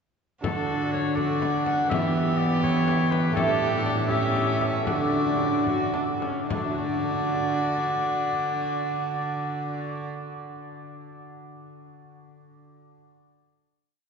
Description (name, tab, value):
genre	classical, renaissance-style consort dance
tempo	71-83 BPM (dotted quarters)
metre	6/8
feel	straight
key	D major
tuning	A4 = 440 Hz
part	warm oboe	melody	0.4-10.1 s	A4 to F#5	-30 LUFS	left 4 dB	none
part	warm violin	second line	0.4-10.1 s	F#4 to G4	-30 LUFS	right 3 dB	none
part	lute	accompaniment	0.4-10.3 s	A2 to D5	-30 LUFS	equal	none
part	warm viola	accompaniment	0.4-10.1 s	B3 to F#4	-32 LUFS	left 1 dB	none
part	rich cello	bass	0.4-10.1 s	A2 to E3	-30 LUFS	right 2 dB	none
part	frame drum	percussion	0.4-6.8 s	none	-34 LUFS	left 3 dB	none
room	wet cathedral reverb, RT60 7.3 s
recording	recorded in a church or concert hall, nothing above 7.9 kHz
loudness	-23 LUFS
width	side -6 dB against mid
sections	0.4-6.5 A section; 6.5-9.9 final chord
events	slowing down 2.6-6.5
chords	0.4 D; 1.9 Em; 3.4 A7sus4; 4.1 A7; 4.9 D